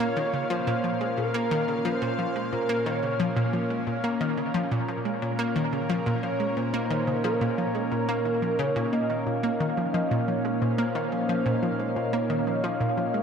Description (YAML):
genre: ambient, sequencer-driven space music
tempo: 89 BPM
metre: 4/4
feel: straight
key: Bb minor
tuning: A4 = 440 Hz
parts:
  - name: pulse-width lead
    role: melody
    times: 0.0-13.2 s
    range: Bb4 to F5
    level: -30 LUFS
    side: equal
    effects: chorus, analog delay
  - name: lush unison pad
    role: sustained chords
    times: 0.0-13.2 s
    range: Bb2 to F5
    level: -28 LUFS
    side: equal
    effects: chorus
  - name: analog pluck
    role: riff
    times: 0.0-13.2 s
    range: Bb2 to Bb3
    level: -28 LUFS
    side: equal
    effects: chorus, analog delay
room: wet spring reverb, RT60 2.4 s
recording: echo-heavy mix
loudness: -24 LUFS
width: side -7 dB against mid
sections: 0.0-13.2 A section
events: none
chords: 0.0 Bbm